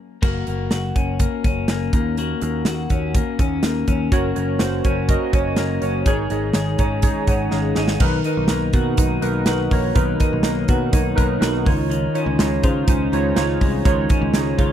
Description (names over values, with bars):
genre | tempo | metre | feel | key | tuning
jangly indie pop | 123 BPM | 4/4 | straight | unclear | A4 = 441 Hz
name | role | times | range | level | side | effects
twelve-string electric guitar | arpeggios | 0.2-14.7 s | Eb3 to Ab4 | -23 LUFS | left 5 dB | tape echo
picked electric bass | bass | 0.2-14.7 s | Gb1 to Db3 | -24 LUFS | equal | none
big rock drum kit | drums | 0.2-14.7 s | crash cymbal, hi-hat, kick drum, snare drum | -20 LUFS | equal | none
warbly lo-fi synth keys | accompaniment | 4.1-14.7 s | Eb4 to Bb5 | -23 LUFS | right 4 dB | chorus
room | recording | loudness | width
little or no reverb | dry, close 1970s-style studio recording | -17 LUFS | side -10 dB against mid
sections
0.2-8.0 A section; 8.0-14.7 B section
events
stop 0.0; synth keys fill 6.5-8.0; drum fill 7.5-8.0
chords
0.2 Gb; 1.9 Ebm7; 4.1 Gb; 6.1 Absus4; 8.0 Cbmaj7; 11.7 Dbadd9